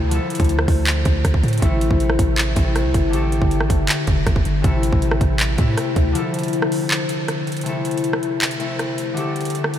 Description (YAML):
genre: hip hop, trap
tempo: 159 BPM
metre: 4/4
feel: half-time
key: A minor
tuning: A4 = 440 Hz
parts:
  - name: concert harp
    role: accompaniment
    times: 0.0-9.8 s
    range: C3 to A4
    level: -22 LUFS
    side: left 3 dB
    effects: none
  - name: long sustained 808-style bass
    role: bass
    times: 0.0-6.1 s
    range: F1 to A2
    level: -20 LUFS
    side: right 1 dB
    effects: none
  - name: trap drum kit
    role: drums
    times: 0.1-9.8 s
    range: handclaps, hi-hat, kick drum, rim click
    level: -21 LUFS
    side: right 1 dB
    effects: none
room: moderate huge ambient reverb, RT60 7.5 s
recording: dreamy mix soaked in reverb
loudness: -17 LUFS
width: side -10 dB against mid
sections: 0.0-7.7 A section; 7.7-9.8 B section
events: break 6.2-7.7, 7.7-9.8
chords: 0.1 Dmadd9; 1.6 Am; 3.1 Gsus2; 4.6 Am; 6.2 Dmadd9; 7.7 Am; 9.2 Gsus2